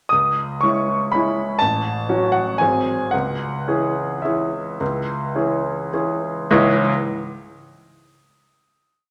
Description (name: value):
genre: classical, piano waltz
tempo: 101-130 BPM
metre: 3/4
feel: rubato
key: C# minor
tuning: A4 = 440 Hz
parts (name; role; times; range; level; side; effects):
- clear grand piano; solo; 0.1-6.9 s; G#1 to D#6; -20 LUFS; equal; none
room: wet recital hall reverb, RT60 1.5 s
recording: none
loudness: -21 LUFS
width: mono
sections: 0.1-6.5 A section; 6.5-8.1 final chord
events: slowing down 2.3-6.5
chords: 0.1 C#m; 1.6 F#m/A; 2.6 G#7; 3.1 C#m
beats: | 0.12 0.63 1.14 | 1.61 2.09 2.60 | 3.13 3.67 4.25 | 4.80 5.35 5.93 | 6.50